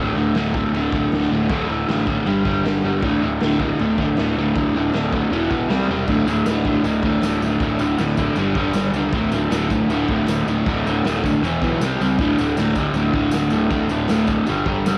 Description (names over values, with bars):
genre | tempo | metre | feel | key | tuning
garage rock duo or trio | 157 BPM | 4/4 | straight | unclear | A4 = 439 Hz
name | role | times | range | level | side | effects
crunchy overdriven guitar | riff | 0.0-15.0 s | D2 to C4 | -21 LUFS | equal | cassette tape
fuzz picked electric bass | bass | 0.0-15.0 s | D1 to C#2 | -30 LUFS | equal | overdrive
raw garage drum kit | drums | 0.3-15.0 s | crash cymbal, kick drum, snare drum | -28 LUFS | equal | cassette tape
tambourine | percussion | 6.1-15.0 s | none | -45 LUFS | equal | none
room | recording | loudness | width
light reverb | home recording on cassette | -20 LUFS | mono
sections
0.0-15.0 A section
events
none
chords
0.0 D5; 2.3 G5; 3.0 D5; 5.3 E5; 5.7 C5; 6.1 D5; 8.4 G5; 9.1 D5; 11.4 E5; 11.8 C5; 12.2 D5